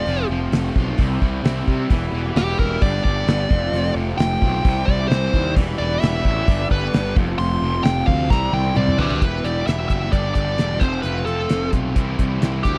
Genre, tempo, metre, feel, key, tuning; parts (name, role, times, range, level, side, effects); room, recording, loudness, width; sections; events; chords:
classic rock; 131 BPM; 4/4; straight; A4 = 440 Hz
dark smooth lead guitar; melody; 0.0-12.8 s; G4 to C6; -26 LUFS; equal; overdrive, slapback echo
distorted electric guitar; riff; 0.0-12.8 s; F2 to G4; -32 LUFS; equal; distortion
overdriven semi-hollow guitar; riff; 0.0-12.8 s; E2 to G4; -30 LUFS; equal
fuzz picked electric bass; bass; 0.1-12.8 s; E1 to C3; -26 LUFS; equal; overdrive
damped 70s drum kit; drums; 0.1-12.8 s; hi-hat, kick drum, snare drum, toms; -21 LUFS; equal
picked acoustic archtop guitar; accompaniment; 1.9-9.2 s; E2 to G4; -32 LUFS; equal
string machine, cellos; sustained chords; 1.9-9.2 s; G3 to E5; -38 LUFS; equal
little or no reverb; dry, close 1970s-style studio recording; -20 LUFS; mono
0.0-9.2 A section; 9.2-12.8 B section
lead electric guitar solo 0.0-9.2; drum fill 8.3-9.2
0.0 F; 1.0 C; 1.9 Em; 2.8 G; 3.5 F; 4.6 C; 5.6 Em; 6.5 G; 7.2 F; 8.3 C; 9.2 Em; 10.1 G; 10.8 F; 12.0 C